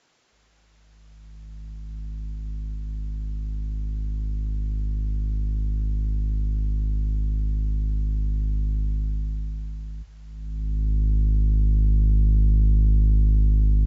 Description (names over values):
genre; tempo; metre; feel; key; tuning
ambient; free time; none; none; unclear; A4 = 440 Hz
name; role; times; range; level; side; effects
warm sub bass; bass; 0.3-13.9 s; Ab1; -26 LUFS; equal; none
room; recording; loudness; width
little or no reverb; home recording on cassette, nothing above 7.8 kHz; -25 LUFS; mono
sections
0.3-13.9 A section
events
fade-in on sub bass 0.3-13.9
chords
none